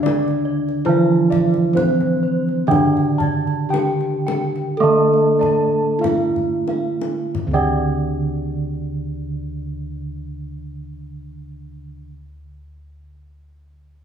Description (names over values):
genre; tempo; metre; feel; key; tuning
Javanese gamelan; 44-75 BPM; 4/4; straight; D slendro; A4 = 440 Hz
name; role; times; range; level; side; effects
gamelan-type bronze metallophone; melody; 0.0-12.1 s; C4-25c to A4; -21 LUFS; equal; none
gamelan-type bronze metallophone; accompaniment; 0.0-12.1 s; D3 to A3; -22 LUFS; right 3 dB; none
gamelan-type bossed gongs; arpeggios; 0.0-12.1 s; C5-25c to A5; -28 LUFS; left 2 dB; none
gamelan-type bronze metallophone; arpeggios; 0.0-12.1 s; C5-25c to A5; -29 LUFS; right 2 dB; none
gamelan-type bossed gongs; bass; 0.0-12.0 s; D2 to F4-45c; -26 LUFS; right 1 dB; none
kendang; percussion; 0.1-8.0 s; none; -28 LUFS; left 4 dB; none
room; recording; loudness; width
wet large studio reverb, RT60 1.4 s; band playing live in one room; -16 LUFS; side -8 dB against mid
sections
0.0-7.3 A section; 7.3-12.9 B section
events
slowing down 0.0-7.3; drum fill 6.3-7.3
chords
none